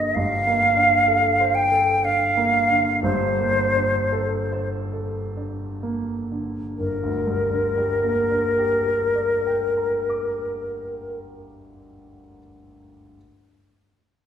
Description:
classical, impressionist duo for flute and grand piano; 40-67 BPM; 3/4; rubato; G minor; A4 = 440 Hz
mellow hollow silver concert flute; melody; 0.0-11.2 s; Bb4 to G5; -20 LUFS; equal
dark concert grand piano; accompaniment; 0.0-13.2 s; G1 to D6; -26 LUFS; right 1 dB
wet recital hall reverb, RT60 1.4 s; heard from further back in the room, lossy compression artefacts; -19 LUFS; side -8 dB against mid
0.0-6.8 A section; 6.8-10.9 B section
slowing down 0.0-6.8
0.2 Gm11; 6.8 Gm

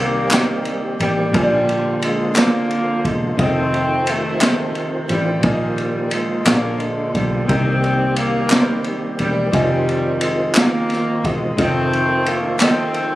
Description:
slow gospel; 59 BPM (dotted quarters); 6/8; straight; A4 = 441 Hz
warm horn section; melody; 0.0-13.2 s; C3 to C4; -21 LUFS; equal
clear grand piano; accompaniment; 0.0-13.2 s; Bb2 to Ab5; -23 LUFS; left 1 dB
tonewheel organ; sustained chords; 0.0-13.2 s; D3 to A4; -24 LUFS; right 2 dB; slow rotary speaker, overdrive, chorus vibrato
fingered electric bass; bass; 0.0-13.2 s; Fb1 to C2; -23 LUFS; equal
jazz brush drum kit; drums; 0.3-13.1 s; kick drum, ride cymbal, snare drum; -22 LUFS; equal
group handclap; percussion; 0.3-12.9 s; -20 LUFS; equal
light reverb; recorded on a phone in the room, studio ambience; -16 LUFS; side -16 dB against mid
0.0-13.2 A section
0.0 Cm7; 1.3 Bb7; 3.4 F7; 5.4 Bb7sus4; 6.5 Bb7; 7.5 Cm7; 9.5 Fm7; 11.6 F7

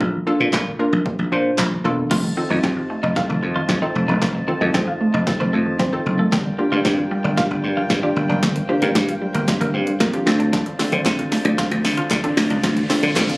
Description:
dance-pop; 114 BPM; 4/4; straight; A4 = 440 Hz
hollow square pluck; accompaniment; 0.0-13.4 s; Bb3 to C5; -24 LUFS; equal; chorus, sidechain pumping
dry thumbed slap bass; bass; 0.0-13.3 s; E1 to D3; -20 LUFS; equal; sidechain pumping
punchy analog drum machine; drums; 0.0-13.4 s; crash cymbal, handclaps, hi-hat, kick drum, snare drum; -22 LUFS; equal
clear woodwind section; sustained chords; 2.1-13.4 s; F4 to A5; -30 LUFS; equal; sidechain pumping
resonant blip pluck; arpeggios; 2.1-13.4 s; D3 to F4; -28 LUFS; right 1 dB; phaser, sidechain pumping, ping-pong delay
twelve-string electric guitar; riff; 2.1-13.3 s; A3 to G4; -25 LUFS; right 1 dB; lush chorus
riser; sound effects; 11.8-13.4 s; -32 LUFS; equal
group handclap; percussion; 11.1-13.3 s; -31 LUFS; left 1 dB
digital ambience; recorded on a phone in the room, club ambience; -17 LUFS; side -24 dB against mid
0.0-2.1 A section; 2.1-13.4 B section
build-up 2.1-13.4; drum fill 2.1-13.4
0.0 Bbmaj7; 2.1 F7; 6.3 Gm7; 10.3 Dm7

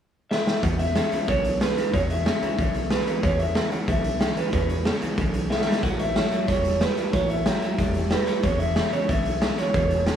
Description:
rockabilly; 184 BPM; 4/4; straight; E mixolydian; A4 = 444 Hz
electric guitar through a small old amp; melody; 0.3-10.0 s; B4 to F#5; -27 LUFS; right 1 dB; analog delay
raw garage drum kit; drums; 0.3-10.1 s; hi-hat, kick drum, snare drum; -25 LUFS; equal
picked steel-string acoustic guitar; accompaniment; 0.6-10.2 s; C#3 to C#5; -32 LUFS; left 3 dB
clean electric guitar; riff; 0.6-10.2 s; E2 to G3; -29 LUFS; right 3 dB; lush chorus
upright bass; bass; 0.6-10.1 s; E1 to E2; -28 LUFS; equal
light reverb; small room ambience; -21 LUFS; side -9 dB against mid
0.6-10.2 A section
drum fill 0.3-0.6, 5.5-5.8
0.0 N.C.; 0.6 E6; 5.8 A6; 8.4 E6

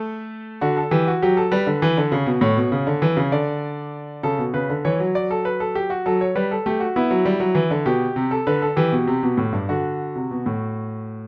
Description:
classical, baroque-style two-part invention for grand piano; 66 BPM (dotted quarters); 6/8; straight; A4 = 439 Hz
clear concert grand piano; solo; 0.0-11.3 s; G2 to D5; -21 LUFS; equal
light reverb; close, detailed microphones; -21 LUFS; mono
0.0-4.2 A section; 4.2-11.3 B section
0.0 N.C.; 0.6 D; 1.5 G; 2.4 A; 3.3 N.C.; 4.2 A; 5.2 G; 6.1 F#m; 7.0 Em; 7.9 G/B; 8.8 Am7; 9.7 D

